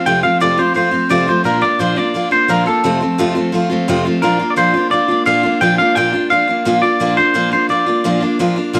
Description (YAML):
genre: rock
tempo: 173 BPM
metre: 4/4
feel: straight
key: Bb major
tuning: A4 = 440 Hz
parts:
  - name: twangy electric guitar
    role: melody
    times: 0.0-8.4 s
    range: A4 to G5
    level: -17 LUFS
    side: equal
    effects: tape echo
  - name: picked steel-string acoustic guitar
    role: accompaniment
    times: 0.0-8.8 s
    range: F2 to F4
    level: -18 LUFS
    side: equal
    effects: none
room: light reverb, small room reverb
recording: none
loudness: -15 LUFS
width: mono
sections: 0.0-4.2 A section; 4.2-8.8 A section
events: none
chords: 0.0 F; 1.5 Bb; 2.8 F; 4.2 Bb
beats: | 0.07 0.41 0.76 1.11 | 1.45 1.80 2.15 2.49 | 2.84 3.19 3.53 3.88 | 4.23 4.57 4.92 5.27 | 5.62 5.96 6.31 6.66 | 7.00 7.35 7.70 8.05 | 8.39 8.74